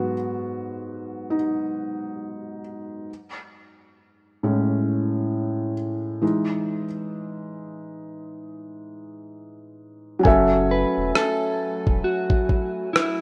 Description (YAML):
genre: lo-fi hip hop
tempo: 67 BPM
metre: 4/4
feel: swing 58% on 16ths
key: F# dorian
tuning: A4 = 440 Hz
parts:
  - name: felt-muted upright piano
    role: accompaniment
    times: 0.0-13.2 s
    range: G#2 to G#5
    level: -27 LUFS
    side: equal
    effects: cassette tape
  - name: dusty soul sampler-style drum kit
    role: drums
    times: 10.2-13.2 s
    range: kick drum, rim click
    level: -23 LUFS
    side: equal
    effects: none
  - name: warbly tape-like pad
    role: sustained chords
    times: 10.3-13.2 s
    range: F#3 to G#5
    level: -38 LUFS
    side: equal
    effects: chorus, built-in reverb
  - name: sub bass with octave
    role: bass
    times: 10.3-12.0 s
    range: E1 to F#1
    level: -30 LUFS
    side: equal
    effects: none
  - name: mellow electric guitar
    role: melody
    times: 10.7-13.2 s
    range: E4 to B4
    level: -27 LUFS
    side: equal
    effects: none
room: moderate plate reverb, RT60 3.0 s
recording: rough home demo mix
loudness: -24 LUFS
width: mono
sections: 0.0-10.3 A section; 10.3-13.2 B section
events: felt piano solo 0.0-10.3; hi-hats muted 10.3-13.2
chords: 0.0 G#m7; 3.1 Amaj7; 6.2 Emaj7; 10.3 F#m9